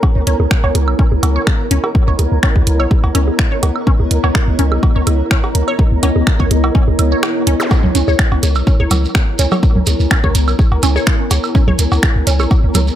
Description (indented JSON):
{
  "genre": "minimal techno",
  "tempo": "125 BPM",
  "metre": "4/4",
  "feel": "swing 53% on 16ths",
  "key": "C# dorian",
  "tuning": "A4 = 440 Hz",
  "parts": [
    { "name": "electronic kick drum", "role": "drums", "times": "0.0-12.6 s", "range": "none", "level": "-13 LUFS", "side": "equal", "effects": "none" },
    { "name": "cowbell, bongos, woodblock and congas", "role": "percussion", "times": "0.0-12.9 s", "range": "none", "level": "-22 LUFS", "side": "right 4 dB", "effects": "digital delay" },
    { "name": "flickering grainy texture", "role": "texture", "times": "0.0-13.0 s", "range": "A#4", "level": "-26 LUFS", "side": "right 2 dB", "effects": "built-in reverb, sidechain pumping" },
    { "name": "granular cloud pad", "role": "texture", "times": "0.0-13.0 s", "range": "B3 to G#5", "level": "-21 LUFS", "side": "equal", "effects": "built-in reverb, sidechain pumping" },
    { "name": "punchy sub bass", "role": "bass", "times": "0.2-12.9 s", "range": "B1 to C#2", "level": "-14 LUFS", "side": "equal", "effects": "sidechain pumping" },
    { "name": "resonant blip pluck", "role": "riff", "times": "0.3-12.4 s", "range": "C#4 to C#5", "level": "-23 LUFS", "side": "left 1 dB", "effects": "phaser, vintage 12-bit sampler grit, sidechain pumping, digital delay" },
    { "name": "house drum kit", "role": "drums", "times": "0.3-12.9 s", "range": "finger snaps, hi-hat", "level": "-19 LUFS", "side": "right 1 dB", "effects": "none" },
    { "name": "zap", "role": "sound effects", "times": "7.6-7.7 s", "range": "none", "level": "-22 LUFS", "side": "left 1 dB", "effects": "none" },
    { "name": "shekere", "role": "percussion", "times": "7.7-13.0 s", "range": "none", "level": "-26 LUFS", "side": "right 4 dB", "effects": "none" }
  ],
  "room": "light reverb",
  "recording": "none",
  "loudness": "-11 LUFS",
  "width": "side -11 dB against mid",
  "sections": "0.0-13.0 A section",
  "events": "kick drops out 7.2-7.7",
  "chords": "0.0 C#m7",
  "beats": "| 0.03 0.51 0.99 1.47 | 1.95 2.43 2.91 3.39 | 3.87 4.35 4.83 5.31 | 5.79 6.27 6.75 7.23 | 7.71 8.19 8.67 9.15 | 9.63 10.11 10.59 11.07 | 11.55 12.03 12.51"
}